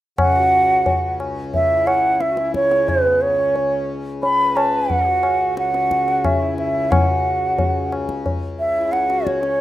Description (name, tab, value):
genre	indian classical, Hindustani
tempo	89 BPM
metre	5/4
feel	straight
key	C# raga malkauns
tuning	A4 = 440 Hz
part	hollow bansuri	melody	0.2-9.6 s	B4+23c to B5+21c	-17 LUFS	right 1 dB	none
part	hand-pumped harmonium	drone	0.2-9.6 s	C#2 to C#3	-27 LUFS	left 3 dB	none
part	tabla	percussion	0.2-9.6 s	none	-22 LUFS	left 2 dB	none
part	dark sarangi	second line	0.4-9.6 s	B3+24c to B4	-29 LUFS	left 3 dB	none
room	moderate studio reverb, RT60 0.6 s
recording	rough home demo mix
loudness	-16 LUFS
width	side -14 dB against mid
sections	0.2-9.6 A section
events	none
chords	none